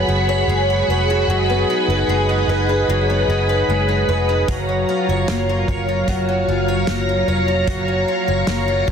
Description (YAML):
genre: dream pop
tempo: 75 BPM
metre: 4/4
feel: straight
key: F# major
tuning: A4 = 442 Hz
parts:
  - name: ensemble organ-string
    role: sustained chords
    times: 0.0-8.9 s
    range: F#3 to B5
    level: -20 LUFS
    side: right 1 dB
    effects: ensemble chorus
  - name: picked twelve-string acoustic guitar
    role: arpeggios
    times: 0.0-8.9 s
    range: F#3 to C#5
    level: -20 LUFS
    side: left 1 dB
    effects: analog chorus, tape echo
  - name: vintage muted fingered electric bass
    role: bass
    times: 0.0-8.9 s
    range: E#1 to F#1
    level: -21 LUFS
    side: equal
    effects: none
  - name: loose indie drum kit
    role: drums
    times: 4.5-8.9 s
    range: hi-hat, kick drum, snare drum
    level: -26 LUFS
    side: equal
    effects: none
room: moderate huge ambient reverb, RT60 4.7 s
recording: dense, heavily limited modern master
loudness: -16 LUFS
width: side -7 dB against mid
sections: 0.0-8.9 A section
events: none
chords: 0.0 C#7sus4/F#; 1.3 G#m7/F#; 4.5 F#maj7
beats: 0.48 | 1.28 2.08 2.88 3.68 | 4.48 5.28 6.08 6.88 | 7.68 8.48